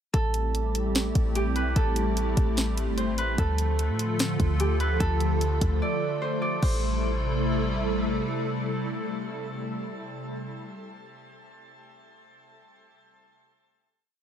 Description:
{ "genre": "hip hop, atmospheric cloud-rap", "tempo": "148 BPM", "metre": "4/4", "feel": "half-time", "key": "A minor", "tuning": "A4 = 440 Hz", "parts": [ { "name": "Celtic harp", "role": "melody", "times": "0.1-8.6 s", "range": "G4 to D5", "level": "-32 LUFS", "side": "right 2 dB", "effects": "ping-pong delay" }, { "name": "hollow soft pad", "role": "sustained chords", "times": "0.3-10.6 s", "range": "C3 to A4", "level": "-30 LUFS", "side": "left 1 dB", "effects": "ensemble chorus, sidechain pumping" }, { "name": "clean 808-style bass", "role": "bass", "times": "0.1-8.2 s", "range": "G1 to A2", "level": "-27 LUFS", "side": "equal", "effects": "none" }, { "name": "smooth R&B drum kit", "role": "drums", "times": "0.1-6.7 s", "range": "crash cymbal, hi-hat, kick drum, snare drum", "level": "-27 LUFS", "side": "equal", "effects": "none" } ], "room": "light reverb", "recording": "none", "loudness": "-24 LUFS", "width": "side -9 dB against mid", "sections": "0.1-6.6 verse; 6.6-9.9 final chord", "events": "break 5.8-6.6", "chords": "0.1 Am7; 3.4 Dm; 6.6 Am7" }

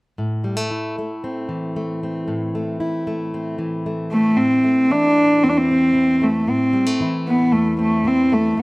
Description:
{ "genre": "folk", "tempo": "114 BPM", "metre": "4/4", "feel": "straight", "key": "A minor", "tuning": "A4 = 440 Hz", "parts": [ { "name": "fingerpicked plugged-in steel-string acoustic guitar", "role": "accompaniment", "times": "0.2-8.6 s", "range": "E2 to E4", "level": "-23 LUFS", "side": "equal", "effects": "none" }, { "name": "warm cello", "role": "melody", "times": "4.1-8.6 s", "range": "A3 to D4", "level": "-15 LUFS", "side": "equal", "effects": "slapback echo" } ], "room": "little or no reverb", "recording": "recorded outdoors, with no room sound", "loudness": "-17 LUFS", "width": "side -24 dB against mid", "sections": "0.2-4.4 A section; 4.4-8.6 B section", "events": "none", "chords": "0.2 Am" }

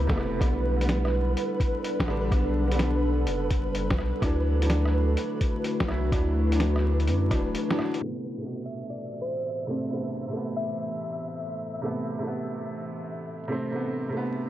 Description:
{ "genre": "future garage", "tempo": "126 BPM", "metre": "4/4", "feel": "swing 67% on 16ths", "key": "A dorian", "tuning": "A4 = 440 Hz", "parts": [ { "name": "clear upright piano", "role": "accompaniment", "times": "0.0-14.5 s", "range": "B2 to E4", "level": "-31 LUFS", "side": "right 1 dB", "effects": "sidechain pumping, tape echo" }, { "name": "warbly tape-like pad", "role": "sustained chords", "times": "0.0-14.5 s", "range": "A2 to B4", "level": "-33 LUFS", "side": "left 2 dB", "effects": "chorus, built-in reverb, sidechain pumping" }, { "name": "warm sub bass", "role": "bass", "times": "0.0-7.6 s", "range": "D1 to F#2", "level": "-26 LUFS", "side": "equal", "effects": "sidechain pumping" }, { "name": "flickering grainy texture", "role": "texture", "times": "0.0-14.5 s", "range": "B4 to E5", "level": "-36 LUFS", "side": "right 1 dB", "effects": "built-in reverb" }, { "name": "electronic kick drum", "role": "drums", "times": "0.1-7.4 s", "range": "none", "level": "-27 LUFS", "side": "equal", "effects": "studio reverb" }, { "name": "lo-fi sampler-style drum kit", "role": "drums", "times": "0.1-8.0 s", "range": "hi-hat, rim click, snare drum", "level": "-32 LUFS", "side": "equal", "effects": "low-pass filter on snare, studio reverb, low-pass filter on hats" }, { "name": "thumb-piano-like synth pluck", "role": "melody", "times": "8.7-11.2 s", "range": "C5 to E5", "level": "-35 LUFS", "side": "left 1 dB", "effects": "chorus, phaser, analog delay" } ], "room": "light reverb, digital ambience", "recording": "vinyl crackle, low-pass filter", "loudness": "-25 LUFS", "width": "side -13 dB against mid", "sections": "0.0-8.0 A section; 8.0-14.5 B section", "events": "break 7.6-8.0; band accent 7.7; filter sweep 8.0-14.5", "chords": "0.4 G; 4.2 Dadd9; 8.0 Amadd9" }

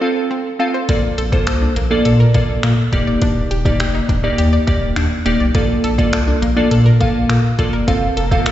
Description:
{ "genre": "dance-pop", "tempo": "103 BPM", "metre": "4/4", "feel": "straight", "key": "Bb major", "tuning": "A4 = 442 Hz", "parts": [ { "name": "glassy digital keys", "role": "accompaniment", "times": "0.0-8.5 s", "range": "Bb3 to F5", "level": "-18 LUFS", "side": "equal", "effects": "chorus, sidechain pumping, slapback echo" }, { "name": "analog pluck", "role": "arpeggios", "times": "0.3-8.5 s", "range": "Bb3 to D5", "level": "-26 LUFS", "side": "left 3 dB", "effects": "chorus, sidechain pumping, tape echo, slapback echo" }, { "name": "saturated sub bass", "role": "bass", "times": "0.9-8.5 s", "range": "Eb1 to Bb2", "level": "-17 LUFS", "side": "equal", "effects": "sidechain pumping" }, { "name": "smooth R&B drum kit", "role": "drums", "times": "0.9-8.5 s", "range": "finger snaps, hi-hat, kick drum", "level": "-19 LUFS", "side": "equal", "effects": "none" }, { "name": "swell", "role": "sound effects", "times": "8.1-8.5 s", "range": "none", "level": "-24 LUFS", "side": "right 4 dB", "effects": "none" } ], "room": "light reverb, digital ambience", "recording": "live gig heard through the venue's PA, recital hall reverb, nothing above 7.8 kHz", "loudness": "-13 LUFS", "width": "side -12 dB against mid", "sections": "0.0-8.5 A section", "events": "swell 8.1-8.5", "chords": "0.0 F; 0.9 Bbmaj7; 2.9 Ebmaj7; 5.5 Bbmaj7; 7.9 F" }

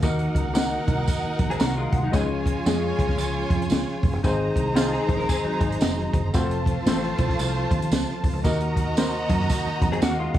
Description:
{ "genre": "uptempo 1960s-style soul", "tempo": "114 BPM", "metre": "4/4", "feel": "swing 60% on 8ths", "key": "unclear", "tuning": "A4 = 440 Hz", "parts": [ { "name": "warm studio violin section", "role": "second line", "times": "0.0-10.4 s", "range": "Eb4 to Bb5", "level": "-30 LUFS", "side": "right 2 dB", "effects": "none" }, { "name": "warm upright piano", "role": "accompaniment", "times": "0.0-10.4 s", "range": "Ab3 to Bb5", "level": "-29 LUFS", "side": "left 3 dB", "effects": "none" }, { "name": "percussive tonewheel organ", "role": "sustained chords", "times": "0.0-10.4 s", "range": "Eb3 to A4", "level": "-32 LUFS", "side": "right 2 dB", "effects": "fast rotary speaker, overdrive, chorus vibrato" }, { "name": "fingered electric bass", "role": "bass", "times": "0.0-10.4 s", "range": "F1 to Gb2", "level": "-27 LUFS", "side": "equal", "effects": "none" }, { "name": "compact cocktail drum kit", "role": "drums", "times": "0.0-10.4 s", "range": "hi-hat, kick drum, snare drum", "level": "-24 LUFS", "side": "equal", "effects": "none" }, { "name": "tambourine", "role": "percussion", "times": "0.0-10.2 s", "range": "none", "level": "-37 LUFS", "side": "right 7 dB", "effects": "none" }, { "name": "direct-recorded clean electric guitar", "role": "riff", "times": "1.5-6.2, 9.9-10.4 s", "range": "Gb3 to C5", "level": "-29 LUFS", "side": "left 5 dB", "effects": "ensemble chorus" } ], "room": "little or no reverb", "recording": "vinyl crackle, studio reverb", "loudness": "-21 LUFS", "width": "side -12 dB against mid", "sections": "0.0-10.4 A section", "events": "upright piano fill 1.3-2.1, 5.3-6.3, 9.5-10.4", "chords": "0.0 Ebm; 2.1 Db; 4.2 Ab; 6.3 F; 8.4 Ebm" }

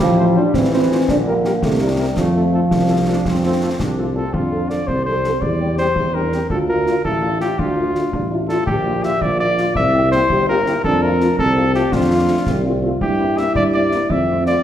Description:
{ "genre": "military-style march for wind band", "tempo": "111 BPM (dotted quarters)", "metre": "6/8", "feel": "straight", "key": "F major", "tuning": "A4 = 440 Hz", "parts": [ { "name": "mellow euphonium", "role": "second line", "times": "0.0-14.6 s", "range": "F3 to G4", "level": "-20 LUFS", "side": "equal", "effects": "none" }, { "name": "clear trombone section", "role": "sustained chords", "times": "0.0-4.3 s", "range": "C3 to D4", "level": "-26 LUFS", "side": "right 1 dB", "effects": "none" }, { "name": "warm tuba", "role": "bass", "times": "0.0-14.6 s", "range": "G1 to G2", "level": "-20 LUFS", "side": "right 1 dB", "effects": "none" }, { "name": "concert snare drum, clash cymbals and concert bass drum", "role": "drums", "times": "0.0-14.6 s", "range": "none", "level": "-25 LUFS", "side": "left 1 dB", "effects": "none" }, { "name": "warm cornet", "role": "melody", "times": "0.2-14.6 s", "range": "F4 to E5", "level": "-20 LUFS", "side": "equal", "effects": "none" }, { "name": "mellow French horn section", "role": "accompaniment", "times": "0.2-14.5 s", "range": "F3 to A4", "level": "-26 LUFS", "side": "left 4 dB", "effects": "none" } ], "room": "wet recital hall reverb, RT60 1.5 s", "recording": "heard from further back in the room", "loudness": "-15 LUFS", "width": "side -10 dB against mid", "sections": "0.0-4.3 A section; 4.3-14.6 A section", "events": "none", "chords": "0.0 F/A; 1.1 Gm/Bb; 1.6 C7; 2.2 F; 5.4 C/E; 6.5 Dm; 8.7 Gm7/Bb; 9.8 C7; 10.8 F; 13.0 C7/G; 14.1 F" }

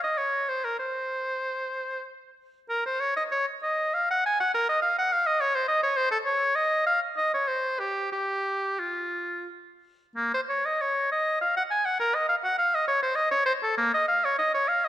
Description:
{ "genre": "classical, baroque-style fantasia for unaccompanied oboe", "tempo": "84-106 BPM", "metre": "3/4", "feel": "rubato", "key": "unclear", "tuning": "A4 = 440 Hz", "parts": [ { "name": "clear oboe", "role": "solo", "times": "0.0-14.9 s", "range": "Bb3 to Ab5", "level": "-24 LUFS", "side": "equal", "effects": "none" } ], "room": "moderate scoring stage reverb, RT60 1.7 s", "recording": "none", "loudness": "-24 LUFS", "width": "side -12 dB against mid", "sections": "0.0-10.2 A section; 10.2-14.9 A section", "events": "none", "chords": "none" }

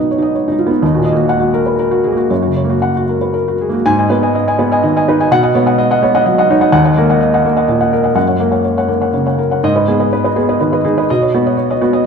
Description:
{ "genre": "neoclassical minimalist piano", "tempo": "113-129 BPM", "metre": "3/4", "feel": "rubato", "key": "G# minor", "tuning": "A4 = 437 Hz", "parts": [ { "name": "felt-muted upright piano", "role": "solo", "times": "0.0-12.1 s", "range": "D#2 to G#5", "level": "-11 LUFS", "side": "equal", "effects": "none" } ], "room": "wet concert hall reverb, RT60 1.7 s", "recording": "recorded in a church or concert hall", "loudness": "-11 LUFS", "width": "side -6 dB against mid", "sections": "0.0-3.9 A section; 3.9-12.1 B section", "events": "none", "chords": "0.0 Badd9; 0.8 D#m; 2.3 F#; 3.9 G#m; 5.3 Badd9; 6.7 D#m; 8.2 F#; 9.6 G#m; 11.1 Badd9" }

